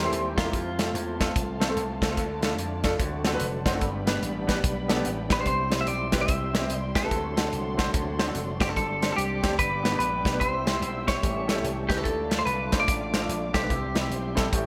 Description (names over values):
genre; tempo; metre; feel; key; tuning
uptempo gospel; 146 BPM; 4/4; swing 63% on 8ths; C major; A4 = 440 Hz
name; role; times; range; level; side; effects
clean electric guitar; melody; 0.0-1.6, 5.3-14.7 s; F4 to E5; -32 LUFS; equal; lush chorus, digital delay
warm grand piano; accompaniment; 0.0-14.7 s; G2 to D5; -34 LUFS; equal; none
muted studio string section; sustained chords; 0.0-14.7 s; C4 to E6; -41 LUFS; equal; none
percussive tonewheel organ; sustained chords; 0.0-14.7 s; D3 to G4; -38 LUFS; equal; slow rotary speaker, overdrive, chorus vibrato
vintage slap bass; bass; 0.0-14.7 s; F1 to F2; -35 LUFS; equal; none
modern studio drum kit; drums; 0.1-14.6 s; hi-hat, kick drum, snare drum; -30 LUFS; equal; gated reverb
room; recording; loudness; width
moderate plate reverb, RT60 1.4 s, studio reverb; bright 1980s-style digital production; -26 LUFS; mono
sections
0.0-14.7 A section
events
none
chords
0.0 C7; 0.5 F; 2.2 Dm; 3.0 D7; 3.8 G; 5.5 C; 7.1 D7; 8.8 Gsus4; 9.6 G; 10.4 C; 11.2 A7; 12.1 Dm; 13.7 C